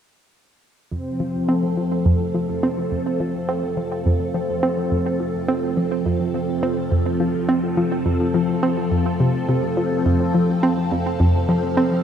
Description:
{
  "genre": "ambient",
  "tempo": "105 BPM",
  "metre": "4/4",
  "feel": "straight",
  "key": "F major",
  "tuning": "A4 = 440 Hz",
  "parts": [
    { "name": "string machine, full ensemble", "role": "sustained chords", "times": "0.9-12.0 s", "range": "F3 to A4", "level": "-21 LUFS", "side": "equal", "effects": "phaser, ensemble chorus" },
    { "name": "analog pluck", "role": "riff", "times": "0.9-12.0 s", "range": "F2 to C4", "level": "-21 LUFS", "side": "equal", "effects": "chorus, tape echo" }
  ],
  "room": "wet plate reverb, RT60 3.4 s",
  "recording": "none",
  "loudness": "-18 LUFS",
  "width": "side -8 dB against mid",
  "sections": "0.9-12.0 A section",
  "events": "filter sweep on synth arpeggio sound 0.9-12.0; filter sweep on string machine 0.9-12.0",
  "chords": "0.9 F"
}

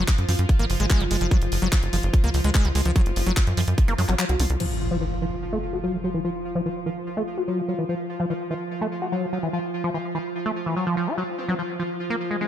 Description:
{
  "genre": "psychedelic trance",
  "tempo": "146 BPM",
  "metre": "4/4",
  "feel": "straight",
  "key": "unclear",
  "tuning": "A4 = 438 Hz",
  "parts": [
    { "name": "pulsing gated texture", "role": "sustained chords", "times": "0.0-12.5 s", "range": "F3 to F4", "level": "-30 LUFS", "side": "equal", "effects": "chorus, built-in reverb, sidechain pumping" },
    { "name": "liquid acid bass", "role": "riff", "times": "0.0-12.5 s", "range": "E3 to Gb4", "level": "-27 LUFS", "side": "left 1 dB", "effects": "chorus, auto-pan, cassette tape, sidechain pumping, dub echo" },
    { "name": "tight sequencer bass", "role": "bass", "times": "0.0-4.6 s", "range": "Gb1 to Gb2", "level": "-23 LUFS", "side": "equal", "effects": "tube saturation" },
    { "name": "electronic kick drum", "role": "drums", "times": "0.1-3.9 s", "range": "none", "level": "-19 LUFS", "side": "equal", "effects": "small room ambience" },
    { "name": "garage drum kit", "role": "drums", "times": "0.1-4.7 s", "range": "crash cymbal, handclaps, hi-hat", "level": "-30 LUFS", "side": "equal", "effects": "small room ambience" },
    { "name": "impact", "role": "sound effects", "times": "4.6-6.2 s", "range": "none", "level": "-31 LUFS", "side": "equal", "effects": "none" },
    { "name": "formant-sweep wobble bass", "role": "second line", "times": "11.4-12.5 s", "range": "C4", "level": "-40 LUFS", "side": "right 4 dB", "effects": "chorus, sidechain pumping, high-pass filter, tape echo" }
  ],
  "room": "light reverb",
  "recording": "none",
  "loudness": "-22 LUFS",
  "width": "side -10 dB against mid",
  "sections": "0.0-4.6 A section; 4.6-12.5 B section",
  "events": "drop 0.0-4.6; kick drops out 4.2-4.6; impact 4.6-6.2; filter sweep on acid bass 4.6-12.5",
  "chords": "0.0 Gb5; 4.6 Gbmaj7(no3); 11.2 N.C."
}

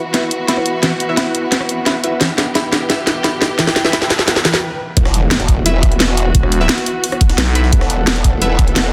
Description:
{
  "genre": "dark technical drum and bass",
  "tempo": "174 BPM",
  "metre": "4/4",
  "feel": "straight",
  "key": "E minor",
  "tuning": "A4 = 440 Hz",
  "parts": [
    { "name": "warm studio string section", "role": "sustained chords", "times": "0.0-8.9 s", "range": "E3 to A4", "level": "-26 LUFS", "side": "equal", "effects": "sidechain pumping" },
    { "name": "riser and impact", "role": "sound effects", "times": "1.7-6.3 s", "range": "none", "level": "-28 LUFS", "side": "equal", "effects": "none" },
    { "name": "airy breathy pad", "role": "texture", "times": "0.0-8.9 s", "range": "E4 to G5", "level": "-28 LUFS", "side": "equal", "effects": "chorus, sidechain pumping" },
    { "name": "direct-recorded clean electric guitar", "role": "arpeggios", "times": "0.1-4.5 s", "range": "E3 to E4", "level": "-26 LUFS", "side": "equal", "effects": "phaser, sidechain pumping, low-pass filter, dub echo" },
    { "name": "orchestra-hit-like synth stab", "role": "stabs", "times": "0.1-8.9 s", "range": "E4 to E5", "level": "-27 LUFS", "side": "equal", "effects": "built-in reverb, dub echo" },
    { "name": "drum and bass drum kit", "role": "drums", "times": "0.1-8.9 s", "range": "hi-hat, rim click, snare drum", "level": "-18 LUFS", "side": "equal", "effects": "none" },
    { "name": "growl bass", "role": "bass", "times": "5.0-8.9 s", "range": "E1", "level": "-20 LUFS", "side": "equal", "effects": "chorus, tube saturation, sidechain pumping" },
    { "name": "breakbeat sampler-style drum kit", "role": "drums", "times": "5.0-8.8 s", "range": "hi-hat, snare drum", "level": "-28 LUFS", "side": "equal", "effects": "none" },
    { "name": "electronic kick drum", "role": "drums", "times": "5.0-8.7 s", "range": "none", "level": "-15 LUFS", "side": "equal", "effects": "none" },
    { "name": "growling FM bass", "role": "bass", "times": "6.3-7.7 s", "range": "E1 to B1", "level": "-17 LUFS", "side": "equal", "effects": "none" }
  ],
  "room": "light reverb, digital ambience",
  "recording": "dense, heavily limited modern master",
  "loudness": "-15 LUFS",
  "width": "mono",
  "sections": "0.0-5.0 A section; 5.0-8.9 B section",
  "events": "build-up 0.0-5.0; drum fill 0.0-4.6; stop 4.6-5.0; drop 5.0-8.9; impact 5.0-6.3",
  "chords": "0.0 Em; 5.0 E5"
}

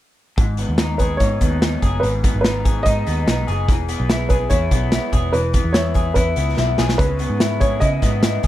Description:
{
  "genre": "jangly indie pop",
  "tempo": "145 BPM",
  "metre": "4/4",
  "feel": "straight",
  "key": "unclear",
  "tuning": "A4 = 440 Hz",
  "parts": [
    { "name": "electric guitar through a small old amp", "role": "arpeggios", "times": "0.4-8.5 s", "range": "G#2 to G#4", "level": "-24 LUFS", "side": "left 3 dB", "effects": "lush chorus, tape echo" },
    { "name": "vintage muted picked electric bass", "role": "bass", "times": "0.4-8.5 s", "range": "E1 to C#3", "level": "-21 LUFS", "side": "equal", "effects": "none" },
    { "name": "modern studio drum kit", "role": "drums", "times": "0.4-8.5 s", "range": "hi-hat, kick drum, snare drum", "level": "-19 LUFS", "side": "equal", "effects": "none" },
    { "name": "warm upright piano", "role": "melody", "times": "1.0-8.5 s", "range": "B4 to D#5", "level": "-24 LUFS", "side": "right 1 dB", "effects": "none" }
  ],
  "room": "little or no reverb",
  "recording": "none",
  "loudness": "-16 LUFS",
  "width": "side -14 dB against mid",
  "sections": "0.4-8.5 A section",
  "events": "drum fill 6.6-7.0",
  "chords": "0.4 G#m; 3.7 E"
}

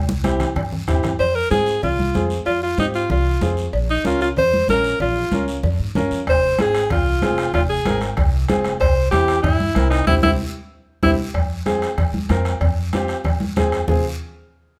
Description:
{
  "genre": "latin, cumbia",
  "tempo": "189 BPM",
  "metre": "4/4",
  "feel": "straight",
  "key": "F harmonic minor",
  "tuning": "A4 = 440 Hz",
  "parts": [
    { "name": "upright bass", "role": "bass", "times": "0.0-14.0 s", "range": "F1 to Ab2", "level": "-26 LUFS", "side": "equal", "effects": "none" },
    { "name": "congas", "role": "percussion", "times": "0.1-14.0 s", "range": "none", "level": "-28 LUFS", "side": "equal", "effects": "none" },
    { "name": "warm upright piano", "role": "accompaniment", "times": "0.2-14.0 s", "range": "C4 to Bb4", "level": "-26 LUFS", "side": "equal", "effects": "none" },
    { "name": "bombo", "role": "percussion", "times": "0.2-1.2, 6.3-14.0 s", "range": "none", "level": "-26 LUFS", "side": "equal", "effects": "none" },
    { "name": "cowbell and timbales", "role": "percussion", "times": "0.2-14.0 s", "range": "none", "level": "-33 LUFS", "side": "equal", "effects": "none" },
    { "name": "guiro", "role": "percussion", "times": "0.2-14.0 s", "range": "none", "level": "-41 LUFS", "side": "equal", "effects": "none" },
    { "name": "clear alto saxophone", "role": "melody", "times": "1.2-11.1 s", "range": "Eb4 to C5", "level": "-22 LUFS", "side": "equal", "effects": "none" }
  ],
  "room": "moderate large studio reverb, RT60 1.0 s",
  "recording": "band playing live in one room",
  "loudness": "-19 LUFS",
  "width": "mono",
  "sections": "0.0-1.2 A section; 1.2-11.3 B section; 11.3-13.9 C section",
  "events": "drum fill 0.0-1.2, 10.4-11.3; band accent 10.1-11.3",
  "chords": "0.0 C; 1.2 Fm; 3.7 Bbm; 6.3 Fm; 8.8 C; 11.3 Fm"
}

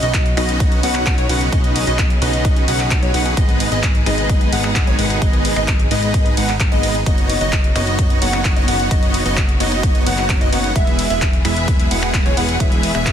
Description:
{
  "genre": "EDM, festival progressive house",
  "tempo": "130 BPM",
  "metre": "4/4",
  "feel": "straight",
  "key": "B major",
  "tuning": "A4 = 440 Hz",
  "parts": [
    { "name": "clear symphonic string section", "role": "sustained chords", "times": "0.0-13.1 s", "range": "B2 to G#4", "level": "-27 LUFS", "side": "equal", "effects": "sidechain pumping" },
    { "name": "plucky unison lead", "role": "arpeggios", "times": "0.0-13.1 s", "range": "C#5 to F#5", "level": "-24 LUFS", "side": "equal", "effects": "lush chorus, sidechain pumping, tape echo" },
    { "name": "dense compressed supersaw", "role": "riff", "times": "0.0-13.1 s", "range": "G#3 to F#5", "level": "-21 LUFS", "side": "equal", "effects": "sidechain pumping, tape echo" },
    { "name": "fat analog bass", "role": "bass", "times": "0.0-13.1 s", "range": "E1 to B1", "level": "-22 LUFS", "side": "equal", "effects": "tube saturation, sidechain pumping" },
    { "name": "big-room dance drum kit", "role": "drums", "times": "0.0-13.1 s", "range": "finger snaps, handclaps, hi-hat, ride cymbal", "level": "-24 LUFS", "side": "equal", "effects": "none" },
    { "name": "electronic kick drum", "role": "drums", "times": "0.1-13.1 s", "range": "none", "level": "-16 LUFS", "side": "equal", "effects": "none" }
  ],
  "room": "digital ambience",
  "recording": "dense, heavily limited modern master",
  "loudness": "-14 LUFS",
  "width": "side -9 dB against mid",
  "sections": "0.0-13.1 A section",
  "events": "none",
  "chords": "0.0 Badd9; 3.4 G#m; 7.1 Badd9/F#; 10.8 E"
}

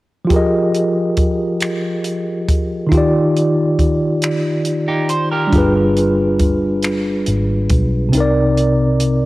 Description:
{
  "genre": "slow six-eight R&B",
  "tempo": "46 BPM (dotted quarters)",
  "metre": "6/8",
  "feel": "straight",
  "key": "unclear",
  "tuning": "A4 = 440 Hz",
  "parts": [
    { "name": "tine electric piano", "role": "accompaniment", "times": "0.2-9.3 s", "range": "C3 to Eb5", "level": "-15 LUFS", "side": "equal", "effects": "medium stereo tremolo" },
    { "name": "compact cocktail drum kit", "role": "drums", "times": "0.3-9.2 s", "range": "finger snaps, hi-hat, kick drum", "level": "-19 LUFS", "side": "equal", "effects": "cassette tape" },
    { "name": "electric guitar at the edge of break-up", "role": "second line", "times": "4.9-5.7 s", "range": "Eb4 to C5", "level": "-22 LUFS", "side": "right 3 dB", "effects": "wide subtle chorus, tape echo" },
    { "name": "vintage muted fingered electric bass", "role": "bass", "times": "5.5-9.3 s", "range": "G1 to C2", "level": "-20 LUFS", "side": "equal", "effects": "none" }
  ],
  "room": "light reverb, studio ambience",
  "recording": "home recording on cassette",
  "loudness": "-14 LUFS",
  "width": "side -18 dB against mid",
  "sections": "0.3-9.3 A section",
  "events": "kick muted 8.1-9.3",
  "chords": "0.3 Fm11; 2.9 Ebmaj9; 5.5 G7b9; 8.1 Cm7"
}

